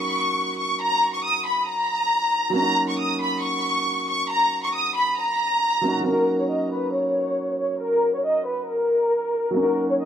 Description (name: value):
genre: hip hop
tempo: 137 BPM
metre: 4/4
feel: half-time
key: Eb minor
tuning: A4 = 441 Hz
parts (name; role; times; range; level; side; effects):
- warm studio violin section; melody; 0.0-10.1 s; Bb4 to Eb6; -21 LUFS; left 1 dB; low-pass filter, digital delay
- dark grand piano; accompaniment; 0.0-10.1 s; Gb3 to Gb4; -28 LUFS; right 2 dB; low-pass filter
room: light reverb, studio reverb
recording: none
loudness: -20 LUFS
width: side -9 dB against mid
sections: 0.0-6.1 A section; 6.1-10.1 B section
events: filter sweep 6.1-10.1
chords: 0.0 Ebm7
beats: 0.37 | 0.81 1.25 1.68 2.12 | 2.56 3.00 3.44 3.87 | 4.31 4.75 5.19 5.62 | 6.06 6.50 6.94 7.38 | 7.81 8.25 8.69 9.13 | 9.57 10.00